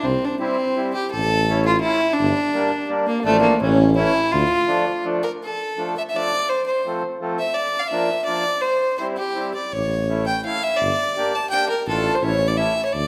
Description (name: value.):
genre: alpine folk, alpine dance band.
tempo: 168 BPM.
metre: 3/4.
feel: rubato.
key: D minor.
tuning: A4 = 439 Hz.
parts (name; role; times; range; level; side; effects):
rich fiddle; melody; 0.0-13.1 s; A3 to A5; -23 LUFS; equal; none.
mellow tuba; bass; 0.0-4.5, 9.7-13.1 s; G1 to D2; -26 LUFS; equal; none.
accordion; accompaniment; 0.4-12.7 s; E3 to G4; -27 LUFS; equal; none.
room: wet recital hall reverb, RT60 1.5 s.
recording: none.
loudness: -21 LUFS.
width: mono.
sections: 0.0-5.4 A section; 5.4-13.1 A section.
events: none.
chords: 0.0 C; 1.1 A; 2.2 Gm; 3.3 Dm/A; 3.6 A; 4.3 Dm; 6.5 F; 7.6 Bb; 8.6 C; 9.7 A; 10.8 Gm; 11.9 Dm/A; 12.2 A.